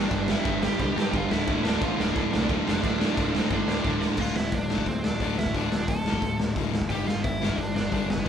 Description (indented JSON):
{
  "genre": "punk rock",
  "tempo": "177 BPM",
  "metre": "4/4",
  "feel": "straight",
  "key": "D minor, D dorian from 4.2 s",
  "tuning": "A4 = 443 Hz",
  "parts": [
    { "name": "high-gain lead guitar", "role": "melody", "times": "0.0-8.3 s", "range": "B3 to A5", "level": "-32 LUFS", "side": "right 3 dB", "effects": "distortion" },
    { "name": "biting overdriven guitar", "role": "riff", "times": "0.0-4.2 s", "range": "D2 to G3", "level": "-29 LUFS", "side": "right 8 dB", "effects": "none" },
    { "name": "sludgy distorted guitar", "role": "riff", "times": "0.0-8.3 s", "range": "D2 to G3", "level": "-30 LUFS", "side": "left 7 dB", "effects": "overdrive" },
    { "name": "modern bright picked electric bass", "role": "bass", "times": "0.0-8.3 s", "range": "D1 to G2", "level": "-33 LUFS", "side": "equal", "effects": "none" },
    { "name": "raw garage drum kit", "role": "drums", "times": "0.1-8.3 s", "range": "crash cymbal, hi-hat, kick drum, snare drum", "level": "-27 LUFS", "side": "equal", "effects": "none" }
  ],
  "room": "light reverb",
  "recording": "band playing live in one room",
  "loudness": "-23 LUFS",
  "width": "side -8 dB against mid",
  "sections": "0.0-4.2 A section; 4.2-8.3 B section",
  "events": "drum fill 3.8-4.2",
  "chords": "0.0 G5; 1.3 D5; 6.9 G"
}